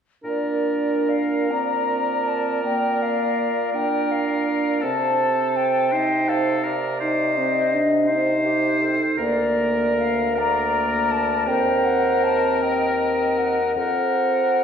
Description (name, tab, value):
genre	classical, slow romantic movement for wind quintet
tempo	53 BPM (dotted quarters)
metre	12/8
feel	uneven beats, rubato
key	Bb major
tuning	A4 = 441 Hz
part	mellow concert flute	melody	0.2-14.6 s	D5 to Bb5	-24 LUFS	left 5 dB	none
part	clear oboe	second line	0.2-14.6 s	A4 to C5	-27 LUFS	left 1 dB	none
part	clear clarinet	accompaniment	0.2-14.6 s	G4 to Eb5	-27 LUFS	right 6 dB	none
part	mellow French horn	accompaniment	0.2-14.6 s	Bb3 to Eb4	-26 LUFS	right 2 dB	none
part	warm bassoon	bass	0.2-14.6 s	D2 to C3	-26 LUFS	right 1 dB	none
room	wet recital hall reverb, RT60 1.7 s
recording	heard from further back in the room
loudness	-19 LUFS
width	side -7 dB against mid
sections	0.2-14.6 A section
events	none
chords	0.2 Bb; 4.8 Adim/C; 9.2 Bb/D; 11.5 Cm7/Eb; 13.8 Fsus4